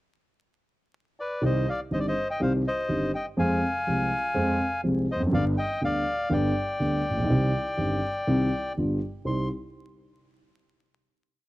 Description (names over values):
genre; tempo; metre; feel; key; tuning
tango; 123 BPM; 4/4; rubato; C harmonic minor; A4 = 442 Hz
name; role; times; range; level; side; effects
bandoneon; melody; 1.2-9.5 s; B4 to C6; -29 LUFS; left 1 dB; none
dark grand piano; accompaniment; 1.4-9.5 s; G1 to Ab4; -25 LUFS; equal; none
room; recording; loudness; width
small room ambience; dry, close 1970s-style studio recording, vinyl crackle; -24 LUFS; side -18 dB against mid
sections
0.0-1.4 pickup bar; 1.4-9.3 A section; 9.3-11.2 final chord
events
none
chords
0.0 N.C.; 1.4 Cm; 3.4 Fm; 5.3 G; 7.3 Cm; 8.8 G7; 9.3 Cm